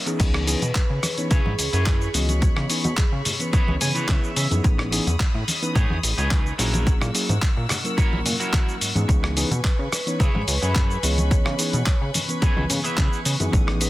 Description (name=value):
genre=nu-disco, nu disco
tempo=108 BPM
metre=4/4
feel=straight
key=C# minor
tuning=A4 = 440 Hz
part: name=mellow tine electric piano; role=accompaniment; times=0.0-13.9 s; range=E3 to D#5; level=-29 LUFS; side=equal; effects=analog delay
part: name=dark studio string section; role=sustained chords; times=0.0-13.9 s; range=A#2 to E6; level=-34 LUFS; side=left 2 dB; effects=sidechain pumping
part: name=electric guitar at the edge of break-up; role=riff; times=0.1-13.8 s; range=D#4 to G#5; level=-31 LUFS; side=right 1 dB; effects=lush chorus, vintage 12-bit sampler grit, analog delay
part: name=dusty soul sampler-style drum kit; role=drums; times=0.1-13.9 s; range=cabasa, crash cymbal, handclaps, hi-hat, rim click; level=-26 LUFS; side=left 1 dB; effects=none
part: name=chorused synth bass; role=bass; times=0.2-13.9 s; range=A1 to C#3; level=-24 LUFS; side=equal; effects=sidechain pumping
part: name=electronic kick drum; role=drums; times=0.2-13.7 s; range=none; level=-20 LUFS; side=equal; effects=overdrive
part: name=vibraphone with medium hard mallets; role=melody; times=0.5-3.2, 9.4-13.9 s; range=F#4 to C#5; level=-33 LUFS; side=right 1 dB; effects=analog delay
part: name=congas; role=percussion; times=0.6-13.5 s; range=none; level=-31 LUFS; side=left 1 dB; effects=none
room=little or no reverb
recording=dense, heavily limited modern master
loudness=-19 LUFS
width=side -17 dB against mid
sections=0.2-13.9 A section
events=drop 0.2-13.9; clean electric guitar fill 3.5-4.6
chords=0.2 C#m7; 4.6 Amaj9#11; 6.6 F#7/A#; 9.1 C#m7